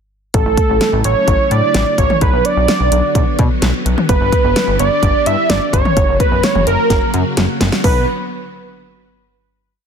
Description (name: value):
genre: synth-pop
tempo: 128 BPM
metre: 4/4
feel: straight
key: B minor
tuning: A4 = 438 Hz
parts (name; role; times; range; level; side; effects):
- wide unison lead; melody; 0.3-8.1 s; A4 to E5; -16 LUFS; right 2 dB; ping-pong delay
- string machine, violas; sustained chords; 0.3-8.1 s; C#3 to G4; -22 LUFS; equal; ensemble chorus
- chorused synth bass; bass; 0.3-8.1 s; F#1 to B2; -18 LUFS; equal; none
- pop drum kit; drums; 0.3-8.0 s; hi-hat, kick drum, snare drum, toms; -16 LUFS; left 1 dB; none
room: moderate plate reverb, RT60 1.4 s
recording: dense, heavily limited modern master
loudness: -12 LUFS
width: side -7 dB against mid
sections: 0.3-7.8 pre-chorus; 7.8-9.7 final chord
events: drum fill 6.9-7.8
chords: 0.3 A6; 2.2 Bm; 4.1 G; 6.0 F#; 7.8 Bm